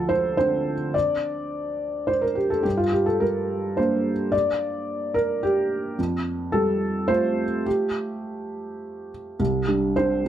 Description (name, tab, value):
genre	neoclassical minimalist piano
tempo	106 BPM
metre	3/4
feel	rubato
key	unclear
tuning	A4 = 438 Hz
part	felt-muted upright piano	solo	0.0-10.3 s	C2 to D5	-22 LUFS	right 1 dB	none
room	light reverb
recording	none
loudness	-21 LUFS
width	side -10 dB against mid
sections	0.0-9.4 A section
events	none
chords	0.0 Dm7; 2.6 Gm; 6.0 Fadd9; 9.4 Csus2